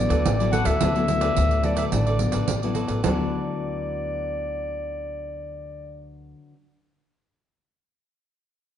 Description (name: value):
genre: samba and choro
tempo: 108 BPM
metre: 4/4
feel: straight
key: D major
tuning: A4 = 439 Hz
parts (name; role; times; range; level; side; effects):
- warm clarinet; melody; 0.0-6.0 s; D5 to F#5; -28 LUFS; left 1 dB; none
- nylon-string guitar; accompaniment; 0.0-6.6 s; A2 to E4; -29 LUFS; left 4 dB; none
- upright bass; bass; 0.0-6.3 s; A1 to D2; -26 LUFS; equal; none
- cavaquinho; accompaniment; 0.1-6.6 s; F#4 to D5; -32 LUFS; right 4 dB; none
- pandeiro; percussion; 0.1-3.2 s; none; -28 LUFS; right 6 dB; none
room: wet large studio reverb, RT60 1.2 s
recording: dark, warm production, nothing above 10.5 kHz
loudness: -21 LUFS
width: side -10 dB against mid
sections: 0.8-3.0 A section; 3.0-5.3 B section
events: none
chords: 0.0 D69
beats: 0.26 | 0.81 1.37 1.93 2.48 | 3.04 3.60 4.15 4.71